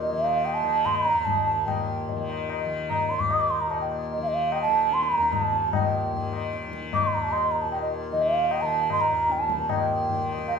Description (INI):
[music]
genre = indian classical, Hindustani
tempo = 149 BPM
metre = 5/4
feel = straight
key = Eb raga yaman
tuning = A4 = 440 Hz
[part]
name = mellow hollow bansuri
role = melody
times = 0.0-10.6 s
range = Eb5 to Eb6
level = -24 LUFS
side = right 3 dB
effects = none
[part]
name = tanpura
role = drone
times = 0.0-10.6 s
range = Eb2 to Eb3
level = -32 LUFS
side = left 3 dB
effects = none
[part]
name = tabla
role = percussion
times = 0.0-10.6 s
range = none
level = -30 LUFS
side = left 7 dB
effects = none
[sound]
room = wet recital hall reverb, RT60 1.6 s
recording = minimal, uncompressed stereo recording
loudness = -22 LUFS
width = side -6 dB against mid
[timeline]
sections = 0.0-10.6 A section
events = speeding up 0.0-10.6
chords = none